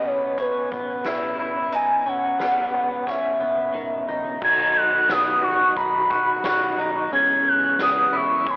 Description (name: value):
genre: dream pop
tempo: 89 BPM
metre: 4/4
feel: straight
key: B mixolydian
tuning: A4 = 440 Hz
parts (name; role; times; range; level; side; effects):
- warbly nostalgic lead; melody; 0.0-8.6 s; B4 to G#6; -20 LUFS; equal; chorus, tremolo, digital delay
- mellow tonewheel organ; sustained chords; 0.0-8.6 s; G#2 to F#4; -32 LUFS; equal; chorus vibrato, lush chorus
- clean electric guitar; arpeggios; 0.0-8.6 s; D#3 to F#4; -25 LUFS; equal; wide subtle chorus, digital delay
- vintage muted fingered electric bass; bass; 0.0-8.6 s; E1 to C#2; -46 LUFS; equal; none
- soft-mallet drum kit; drums; 0.4-8.6 s; crash cymbal, hi-hat, kick drum, ride cymbal, snare drum, tambourine, toms; -31 LUFS; equal; none
room: moderate concert hall reverb, RT60 2.4 s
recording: blown-out, overdriven recording, overdrive, telephone sound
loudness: -19 LUFS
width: side -25 dB against mid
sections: 0.0-4.4 A section; 4.4-8.6 B section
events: drum fill 3.1-4.4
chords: 0.0 Asus2; 1.7 E; 4.4 B; 7.1 C#m7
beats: 0.37 1.05 | 1.72 2.40 3.07 3.74 | 4.42 5.09 5.77 6.44 | 7.12 7.79 8.46